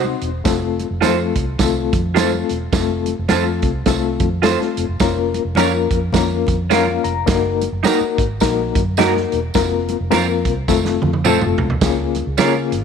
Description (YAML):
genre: uptempo 1960s-style soul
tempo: 106 BPM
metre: 4/4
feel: swing 59% on 8ths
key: unclear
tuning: A4 = 439 Hz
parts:
  - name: barky reed electric piano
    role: accompaniment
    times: 0.0-12.8 s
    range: A3 to Bb5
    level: -19 LUFS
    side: left 11 dB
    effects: overdrive, fast tremolo
  - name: electric guitar through a small old amp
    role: stabs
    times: 0.0-12.5 s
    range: C4 to C5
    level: -22 LUFS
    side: right 11 dB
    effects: analog chorus, tape echo
  - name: vintage muted fingered electric bass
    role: bass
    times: 0.0-12.8 s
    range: E1 to Db3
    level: -23 LUFS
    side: right 1 dB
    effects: none
  - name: congas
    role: percussion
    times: 0.0-12.5 s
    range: none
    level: -31 LUFS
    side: equal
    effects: none
  - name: natural country drum kit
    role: drums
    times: 0.2-12.8 s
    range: hi-hat, kick drum, snare drum, toms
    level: -21 LUFS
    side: right 4 dB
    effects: none
  - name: tambourine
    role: percussion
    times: 0.5-12.5 s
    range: none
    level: -30 LUFS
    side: right 11 dB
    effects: none
room: light reverb, small room ambience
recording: 1960s-style stereo with parts hard left and right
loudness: -15 LUFS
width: side -6 dB against mid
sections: 0.0-11.8 A section; 11.8-12.8 B section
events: reed electric piano fill 6.4-7.3; drum fill 10.7-11.8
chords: 0.4 F; 5.0 Bbm/F; 7.3 Ebm/Gb; 9.5 Fsus4; 10.7 F; 11.8 Db6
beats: | 0.45 1.02 1.59 2.16 | 2.73 3.30 3.87 4.43 | 5.00 5.57 6.14 6.71 | 7.28 7.84 8.41 8.98 | 9.55 10.11 10.68 11.25 | 11.82 12.38